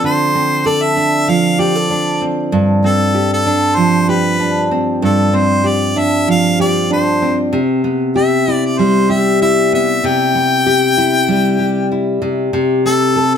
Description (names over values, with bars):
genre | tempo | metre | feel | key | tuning
acoustic pop | 96 BPM | 4/4 | swing 55% on 16ths | G mixolydian | A4 = 440 Hz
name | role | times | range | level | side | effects
clear harmonica | melody | 0.0-13.3 s | A4 to G5 | -16 LUFS | left 1 dB | none
nylon-string guitar | accompaniment | 0.0-13.4 s | G2 to A4 | -13 LUFS | equal | none
room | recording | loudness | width
moderate stone room reverb, RT60 0.9 s | band playing live in one room | -12 LUFS | side -8 dB against mid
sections
0.0-13.4 A section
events
none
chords
0.0 Dm7; 2.5 G7sus4; 7.5 Cmaj7; 12.2 Am7/C